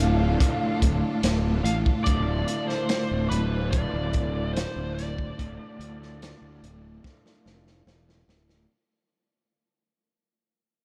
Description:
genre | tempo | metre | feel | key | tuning
psychedelic rock | 72 BPM | 4/4 | straight | D minor | A4 = 440 Hz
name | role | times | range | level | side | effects
lead guitar through a small cranked amp | melody | 0.0-7.8 s | B4 to F5 | -35 LUFS | equal | wah, overdrive, delay
rich symphonic string section | sustained chords | 0.0-8.7 s | A3 to A4 | -38 LUFS | equal | none
electric guitar through a small old amp | riff | 0.0-8.7 s | D2 to F4 | -33 LUFS | equal | rotary speaker
fuzz fingered electric bass | bass | 0.0-8.7 s | D1 to D2 | -30 LUFS | equal | overdrive
crunchy breakbeat drum kit | drums | 0.4-8.7 s | hi-hat, kick drum, snare drum | -30 LUFS | equal | none
room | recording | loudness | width
moderate huge ambient reverb, RT60 7.8 s | dreamy mix soaked in reverb | -25 LUFS | mono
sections
0.0-8.7 A section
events
fade-out 0.0-8.7; drum fill 7.0-8.7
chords
0.0 Dm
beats
0.41 1.24 | 2.07 2.90 3.73 4.56 | 5.39 6.22 7.04 7.87

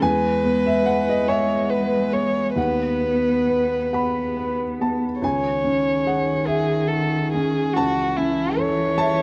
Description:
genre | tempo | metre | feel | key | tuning
neoclassical piano and strings | 47 BPM (dotted quarters) | 6/8 | uneven beats, rubato | C# minor | A4 = 440 Hz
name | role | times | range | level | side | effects
muted violin | melody | 0.0-9.2 s | E4 to C#5 | -25 LUFS | equal | none
muted cello | second line | 0.0-9.2 s | D#3 to B3 | -28 LUFS | equal | none
clear upright piano | accompaniment | 0.0-9.2 s | C#2 to B5 | -25 LUFS | equal | none
room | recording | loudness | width
little or no reverb | dark, warm production | -21 LUFS | mono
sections
0.0-9.2 A section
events
none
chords
0.0 E; 2.6 B/D#; 5.2 C#madd9; 7.8 A/C#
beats
| 0.03 1.28 | 2.56 3.93 | 5.22 6.47 | 7.77 8.99

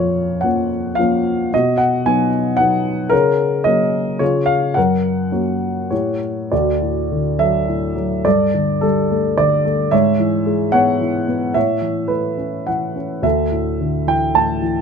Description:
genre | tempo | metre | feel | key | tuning
classical, lyrical solo piano | 98-114 BPM | 3/4 | rubato | F# major, D major from 6.5 s | A4 = 443 Hz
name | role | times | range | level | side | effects
dark baby grand piano | solo | 0.0-14.8 s | D2 to A5 | -15 LUFS | equal | none
room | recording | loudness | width
light reverb | close, detailed microphones | -15 LUFS | side -6 dB against mid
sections
0.0-6.5 A section; 6.5-14.8 B section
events
none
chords
0.0 A#m; 1.5 B; 3.1 F#/C#; 4.2 C#; 4.8 F#; 5.9 A7; 6.5 Dadd9; 8.3 Gsus2; 9.9 E6/G#; 11.6 Aadd9; 13.2 Dsus2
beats
0.43 0.99 | 1.53 2.06 2.59 | 3.12 3.66 4.21 | 4.77 5.33 5.91 | 6.52 7.10 7.68 | 8.25 8.83 9.38 | 9.92 10.46 11.01 | 11.55 12.10 12.67 | 13.24 13.81 14.36

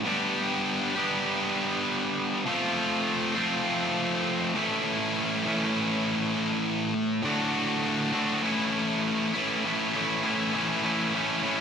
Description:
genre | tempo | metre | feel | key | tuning
rock | 100 BPM | 4/4 | straight | A mixolydian | A4 = 439 Hz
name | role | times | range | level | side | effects
sludgy distorted guitar | solo | 0.0-11.6 s | A2 to G4 | -25 LUFS | equal | overdrive
room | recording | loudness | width
wet lush hall reverb, RT60 1.9 s | big arena sound | -25 LUFS | side -7 dB against mid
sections
0.0-9.6 A section; 9.6-11.6 B section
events
none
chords
0.1 G; 2.5 F; 4.5 A; 7.2 D/A; 8.4 A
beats
| 0.06 0.66 1.26 1.85 | 2.45 3.05 3.65 4.25 | 4.85 5.45 6.05 6.64 | 7.24 7.84 8.44 9.04 | 9.64 10.24 10.84 11.45

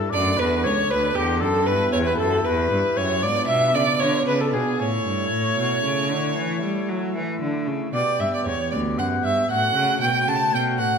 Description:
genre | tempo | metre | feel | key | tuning
classical, baroque-style sonata movement with continuo | 77 BPM (dotted quarters) | 12/8 | straight | unclear | A4 = 442 Hz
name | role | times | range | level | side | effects
warm oboe | melody | 0.0-11.0 s | G4 to A5 | -27 LUFS | left 8 dB | none
pipe organ, principal chorus | accompaniment | 0.0-11.0 s | C#2 to A4 | -27 LUFS | equal | none
rich cello | bass | 0.0-11.0 s | C#2 to G3 | -26 LUFS | equal | none
rich violin | second line | 0.1-11.0 s | G4 to A5 | -22 LUFS | right 3 dB | none
room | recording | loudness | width
wet recital hall reverb, RT60 1.5 s | none | -19 LUFS | side -6 dB against mid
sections
0.0-11.0 A section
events
none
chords
0.1 D; 1.7 Em; 3.2 G#dim7; 4.8 A; 7.9 G; 9.5 F#m/A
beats
0.13 0.90 | 1.67 2.44 3.22 4.00 | 4.79 5.58 6.37 7.15 | 7.94 8.72 9.50 10.27

